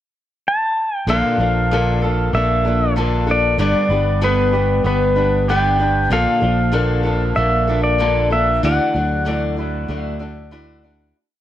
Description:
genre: folk rock and heartland rock.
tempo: 95 BPM.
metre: 4/4.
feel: straight.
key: unclear.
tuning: A4 = 444 Hz.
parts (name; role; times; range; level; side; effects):
pedal steel guitar; melody; 0.5-10.8 s; B4 to A5; -19 LUFS; left 1 dB; none.
picked steel-string acoustic guitar; accompaniment; 1.1-11.2 s; G2 to D5; -23 LUFS; left 3 dB; none.
electric guitar through a small old amp; riff; 1.1-11.2 s; G2 to A4; -23 LUFS; right 1 dB; none.
fingered electric bass; bass; 1.1-11.1 s; G1 to D2; -20 LUFS; right 1 dB; none.
room: light reverb.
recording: none.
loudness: -15 LUFS.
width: side -12 dB against mid.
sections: 0.0-1.1 pickup bar; 1.1-11.2 verse.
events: fade-out 8.6-11.2.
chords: 0.0 N.C.; 1.1 Bbmaj7; 3.6 G; 6.1 Bbmaj7; 8.6 Dadd9.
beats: 0.45 | 1.08 1.71 2.33 2.96 | 3.59 4.22 4.85 5.48 | 6.11 6.75 7.38 8.01 | 8.64 9.27 9.90 10.53.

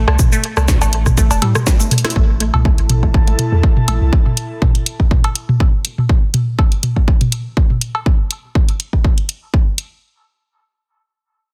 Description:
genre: minimal techno.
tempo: 122 BPM.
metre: 4/4.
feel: swing 54% on 16ths.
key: A minor.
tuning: A4 = 441 Hz.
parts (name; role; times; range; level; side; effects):
punchy sub bass; bass; 0.0-4.1 s; E1 to A2; -18 LUFS; equal; sidechain pumping.
booming analog drum machine; percussion; 0.1-8.0 s; cowbell, rim click, toms; -21 LUFS; equal; soft clipping on snare, dub echo.
electronic kick drum; drums; 0.2-9.6 s; none; -15 LUFS; equal; none.
house drum kit; drums; 0.2-9.9 s; cabasa, hi-hat, snare drum; -23 LUFS; equal; soft clipping on snare.
resonant blip pluck; riff; 0.3-3.9 s; G3 to E4; -27 LUFS; equal; phaser, sidechain pumping, dub echo.
airy breathy pad; texture; 2.2-6.1 s; E4 to A5; -30 LUFS; equal; chorus, sidechain pumping.
room: digital ambience.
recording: dense, heavily limited modern master.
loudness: -15 LUFS.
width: mono.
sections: 0.0-2.2 A section; 2.2-10.0 B section.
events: drop 0.0-2.2; drum fill 1.9; fade-out on analog synth pad 2.2-6.1; filter sweep on synth arpeggio sound 2.2-4.1.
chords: 0.0 A5.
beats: | 0.19 0.68 1.18 1.67 | 2.16 2.65 3.14 3.63 | 4.13 4.62 5.11 5.60 | 6.09 6.58 7.08 7.57 | 8.06 8.55 9.04 9.54.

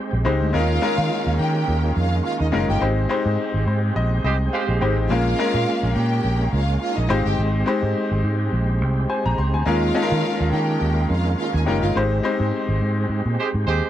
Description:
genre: disco.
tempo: 105 BPM.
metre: 4/4.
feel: swing 56% on 16ths.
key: unclear.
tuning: A4 = 442 Hz.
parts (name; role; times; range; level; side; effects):
bright baby grand piano; accompaniment; 0.0-13.9 s; Ab3 to C6; -24 LUFS; left 4 dB; none.
overdriven tonewheel organ; sustained chords; 0.0-13.9 s; Eb3 to G4; -28 LUFS; right 3 dB; chorus vibrato, fast rotary speaker.
fingered electric bass; bass; 0.1-13.8 s; Gb1 to Eb3; -21 LUFS; right 1 dB; none.
warm studio string section; second line; 0.5-11.9 s; Eb4 to Ab5; -26 LUFS; right 2 dB; none.
clear horn section; stabs; 4.2-4.9, 13.4-13.9 s; Ab3 to C5; -23 LUFS; right 5 dB; none.
room: little or no reverb.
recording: dry, close 1970s-style studio recording.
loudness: -18 LUFS.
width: side -12 dB against mid.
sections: 0.0-13.9 A section.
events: band accent 2.8-5.1, 12.0-13.9; grand piano fill 3.4-5.1, 8.8-9.7.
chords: 0.0 Abmaj7; 0.5 Eb9sus4; 2.8 Abmaj7; 5.1 Bbm7; 7.1 Abmaj7; 9.7 Eb9sus4; 12.0 Abmaj7.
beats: | 0.54 1.11 1.68 2.25 | 2.81 3.38 3.96 4.53 | 5.09 5.67 6.24 6.81 | 7.38 7.95 8.52 9.10 | 9.67 10.24 10.81 11.38 | 11.96 12.53 13.10 13.67.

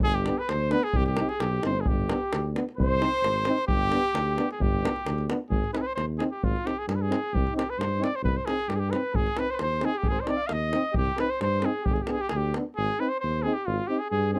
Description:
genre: balkan folk, Balkan brass band.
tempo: 132 BPM.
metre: 2/4.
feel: straight.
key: unclear.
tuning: A4 = 442 Hz.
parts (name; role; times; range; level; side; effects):
warm cornet; melody; 0.0-14.4 s; F4 to F5; -31 LUFS; equal; none.
mellow trumpet; second line; 0.0-5.3, 8.2-14.4 s; F4 to F5; -38 LUFS; equal; none.
mellow tuba; bass; 0.0-14.4 s; G1 to G2; -32 LUFS; equal; none.
davul; percussion; 0.0-12.6 s; none; -32 LUFS; equal; none.
warm euphonium; accompaniment; 0.3-14.4 s; D4 to Eb4; -35 LUFS; equal; none.
warm trombone; accompaniment; 0.3-14.4 s; B3 to C4; -35 LUFS; equal; none.
room: little or no reverb.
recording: close, detailed microphones.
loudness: -27 LUFS.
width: mono.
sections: 0.0-5.5 A section; 5.5-12.8 B section; 12.8-14.4 B section.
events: none.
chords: 0.0 G; 0.9 Cm; 1.9 G; 2.8 Cm; 3.7 G; 5.5 Ab; 7.3 Cm; 9.1 Ab; 10.9 Cm; 11.9 G; 12.8 Ab.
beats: | 0.03 0.49 | 0.94 1.40 | 1.86 2.31 | 2.77 3.23 | 3.68 4.14 | 4.59 5.05 | 5.50 5.96 | 6.41 6.87 | 7.32 7.78 | 8.23 8.68 | 9.14 9.59 | 10.04 10.50 | 10.95 11.40 | 11.85 12.31 | 12.76 13.21 | 13.66 14.12.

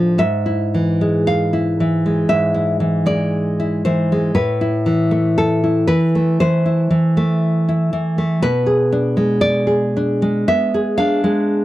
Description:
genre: romantic piece for solo classical guitar.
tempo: 58 BPM.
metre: 4/4.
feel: rubato.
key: A minor.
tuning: A4 = 440 Hz.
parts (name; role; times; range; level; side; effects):
nylon-string guitar; solo; 0.0-11.6 s; G#2 to F5; -15 LUFS; equal; none.
room: light reverb.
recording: dry, close 1970s-style studio recording.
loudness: -15 LUFS.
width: side -15 dB against mid.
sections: 0.0-11.6 A section.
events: none.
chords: 0.2 E/G#; 4.4 Am; 8.4 Bdim7.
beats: | 0.20 1.27 2.28 3.32 | 4.37 5.39 6.42 7.44 | 8.44 9.45 10.49 11.48.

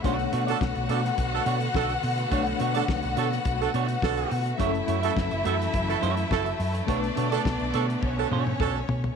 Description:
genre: disco.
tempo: 105 BPM.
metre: 4/4.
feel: straight.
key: B minor.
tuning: A4 = 440 Hz.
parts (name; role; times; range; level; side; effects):
rich studio violin section; second line; 0.0-9.2 s; C#4 to F#5; -30 LUFS; left 2 dB; none.
mellow reed electric piano; accompaniment; 0.0-9.2 s; B2 to C#5; -34 LUFS; left 13 dB; fast tremolo.
semi-hollow electric guitar; accompaniment; 0.0-9.1 s; A3 to E5; -33 LUFS; right 14 dB; none.
clear studio string section; sustained chords; 0.0-9.2 s; D3 to B3; -35 LUFS; equal; none.
hollow-body short-scale fingered electric bass; bass; 0.0-9.1 s; F#1 to B2; -29 LUFS; equal; none.
damped 70s drum kit; drums; 0.0-9.2 s; hi-hat, kick drum, snare drum, toms; -31 LUFS; left 2 dB; none.
warm horn section; stabs; 0.5-8.8 s; D4 to A4; -31 LUFS; right 15 dB; none.
room: light reverb.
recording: 1960s-style stereo with parts hard left and right.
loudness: -23 LUFS.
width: side -6 dB against mid.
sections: 0.0-9.2 A section.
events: drum fill 8.0-9.2.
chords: 0.0 Bm9; 4.6 F#m7; 6.9 Bm9.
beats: | 0.04 0.61 1.18 1.75 | 2.32 2.89 3.46 4.03 | 4.60 5.17 5.74 6.31 | 6.88 7.45 8.03 8.60.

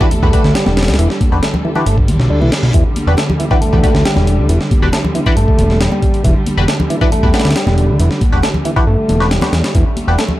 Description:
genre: breakbeat, breaks.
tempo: 137 BPM.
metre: 4/4.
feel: straight.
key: E minor.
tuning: A4 = 440 Hz.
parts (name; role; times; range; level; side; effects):
rich symphonic string section; sustained chords; 0.0-10.4 s; D3 to A4; -21 LUFS; right 1 dB; sidechain pumping.
percussive tonewheel organ; riff; 0.0-10.2 s; D3 to A3; -19 LUFS; equal; slow rotary speaker, overdrive, digital delay.
band-passed chord stab; stabs; 0.0-10.1 s; D4 to B4; -21 LUFS; left 2 dB; phaser, analog chorus, digital delay.
breakbeat sampler-style drum kit; drums; 0.0-10.3 s; hi-hat, kick drum, snare drum; -15 LUFS; equal; none.
congas; percussion; 0.0-10.4 s; none; -22 LUFS; left 1 dB; none.
fat analog bass; bass; 0.1-10.2 s; E1 to E2; -13 LUFS; equal; tube saturation.
reverse cymbal; sound effects; 2.1-2.7 s; none; -29 LUFS; left 1 dB; none.
room: light reverb.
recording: dark, warm production.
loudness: -11 LUFS.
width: side -15 dB against mid.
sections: 0.0-10.4 A section.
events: reverse cymbal 2.1-2.7.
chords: 0.0 Em9.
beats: 0.11 0.55 | 0.99 1.43 1.86 2.30 | 2.74 3.18 3.62 4.05 | 4.49 4.93 5.37 5.81 | 6.24 6.68 7.12 7.56 | 8.00 8.43 8.87 9.31 | 9.75 10.19.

